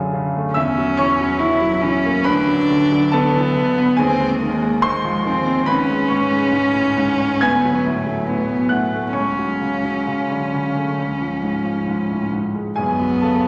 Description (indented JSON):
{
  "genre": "classical, romantic duo for cello and grand piano",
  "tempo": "68 BPM",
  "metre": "4/4",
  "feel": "uneven beats, rubato",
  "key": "F# minor",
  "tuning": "A4 = 441 Hz",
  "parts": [
    { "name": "clear concert grand piano", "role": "accompaniment", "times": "0.0-13.5 s", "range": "C#2 to G#6", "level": "-22 LUFS", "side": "equal", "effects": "none" },
    { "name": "warm cello", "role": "melody", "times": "0.5-13.5 s", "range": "G#3 to E4", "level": "-21 LUFS", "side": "equal", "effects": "none" }
  ],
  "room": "wet concert hall reverb, RT60 2.0 s",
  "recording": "none",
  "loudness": "-19 LUFS",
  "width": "mono",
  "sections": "0.0-13.5 A section",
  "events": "none",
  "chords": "0.0 F#m; 0.5 F#7(no3)/E; 2.2 Bm/D; 4.0 G#/D#; 5.7 C#5; 7.4 D; 9.2 F#m/C#; 11.0 C#; 12.8 F#m"
}